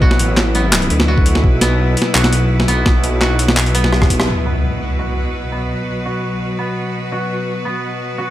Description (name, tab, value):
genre	half-time drum and bass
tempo	169 BPM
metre	4/4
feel	half-time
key	unclear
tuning	A4 = 440 Hz
part	bright studio cello section	sustained chords	0.0-8.3 s	B2 to B4	-21 LUFS	left 1 dB	sidechain pumping
part	koto	arpeggios	0.0-8.3 s	B3 to F#4	-23 LUFS	right 2 dB	low-pass filter, digital delay
part	dark detuned saw bass	bass	0.0-4.3 s	A1 to D2	-16 LUFS	equal	none
part	electronic kick drum	drums	0.0-4.2 s	none	-14 LUFS	equal	overdrive
part	boom bap sampler-style drum kit	drums	0.1-4.3 s	handclaps, hi-hat, rim click, snare drum	-17 LUFS	equal	overdrive
part	impact	sound effects	4.3-5.7 s	none	-21 LUFS	equal	none
room	light reverb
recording	none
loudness	-14 LUFS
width	side -14 dB against mid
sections	0.0-4.3 A section; 4.3-8.3 B section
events	drum fill 3.9-4.3; band accent 4.2; impact 4.3-5.7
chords	0.0 B5